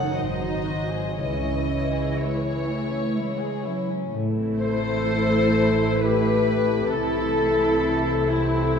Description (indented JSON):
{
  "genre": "classical, slow romantic movement for symphony orchestra",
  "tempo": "58-68 BPM",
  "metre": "3/4",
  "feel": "rubato",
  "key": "C# minor, A minor from 4.2 s",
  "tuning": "A4 = 439 Hz",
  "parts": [
    { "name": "rich studio violin section", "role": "melody", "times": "0.0-8.8 s", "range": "E4 to F#5", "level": "-32 LUFS", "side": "left 2 dB", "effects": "none" },
    { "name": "warm chamber violin section", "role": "second line", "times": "0.0-8.8 s", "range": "G#3 to C#5", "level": "-30 LUFS", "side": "left 4 dB", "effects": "none" },
    { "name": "dark symphonic viola section", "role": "accompaniment", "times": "0.0-8.8 s", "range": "D#3 to E4", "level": "-30 LUFS", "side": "right 2 dB", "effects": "none" },
    { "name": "concert harp", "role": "arpeggios", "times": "0.0-8.8 s", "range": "F#2 to A5", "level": "-30 LUFS", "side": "left 4 dB", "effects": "none" },
    { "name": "warm symphonic double bass section", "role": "bass", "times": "0.0-8.8 s", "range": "G#1 to C#2", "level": "-30 LUFS", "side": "right 4 dB", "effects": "none" },
    { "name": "warm symphonic cello section", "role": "bass", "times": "0.2-8.8 s", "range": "G#2 to A3", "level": "-28 LUFS", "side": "right 3 dB", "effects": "none" },
    { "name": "mellow French horn section", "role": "sustained chords", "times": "4.2-8.8 s", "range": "E3 to A4", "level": "-28 LUFS", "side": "left 7 dB", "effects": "none" },
    { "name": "mellow clarinet", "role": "second line", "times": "4.6-8.8 s", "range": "E4 to C5", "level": "-27 LUFS", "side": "left 1 dB", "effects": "none" },
    { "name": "mellow small flute group", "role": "second line", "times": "4.6-8.8 s", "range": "C4 to A4", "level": "-30 LUFS", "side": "left 2 dB", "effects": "none" }
  ],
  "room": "wet scoring stage reverb, RT60 1.5 s",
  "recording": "minimal, uncompressed stereo recording",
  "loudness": "-21 LUFS",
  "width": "side -6 dB against mid",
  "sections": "0.0-4.2 A section; 4.2-8.8 B section",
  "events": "none",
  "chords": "0.2 G#7; 1.2 C#m; 4.2 Am; 7.0 Am/C"
}